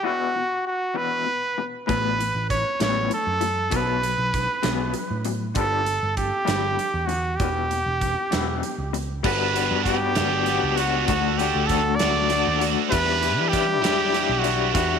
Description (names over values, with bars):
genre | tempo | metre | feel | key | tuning
indie rock | 65 BPM (dotted quarters) | 6/8 | straight | unclear | A4 = 440 Hz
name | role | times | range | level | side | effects
bright trumpet | melody | 0.0-15.0 s | F#4 to D5 | -24 LUFS | right 2 dB | slapback echo
electric guitar through a small old amp | riff | 0.0-15.0 s | E2 to F#4 | -27 LUFS | left 12 dB | tremolo
picked electric bass | bass | 1.9-15.0 s | E1 to E3 | -29 LUFS | right 2 dB | none
big rock drum kit | drums | 1.9-14.9 s | crash cymbal, hi-hat, kick drum, snare drum | -29 LUFS | right 2 dB | none
scooped high-gain guitar | riff | 9.2-15.0 s | D3 to G4 | -26 LUFS | right 17 dB | distortion, analog chorus, slapback echo
room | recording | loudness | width
moderate plate reverb, RT60 2.6 s | 1960s-style stereo with parts hard left and right | -20 LUFS | side -7 dB against mid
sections
0.0-9.2 A section; 9.2-15.0 B section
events
none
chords
0.0 Esus2; 1.9 Asus2; 3.7 B5; 5.6 G5; 7.4 Em; 9.2 Gmaj7; 11.1 D; 12.9 Em7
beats
| 0.05 0.97 | 1.88 2.80 | 3.72 4.64 | 5.56 6.48 | 7.40 8.32 | 9.24 10.16 | 11.08 11.99 | 12.91 13.83 | 14.75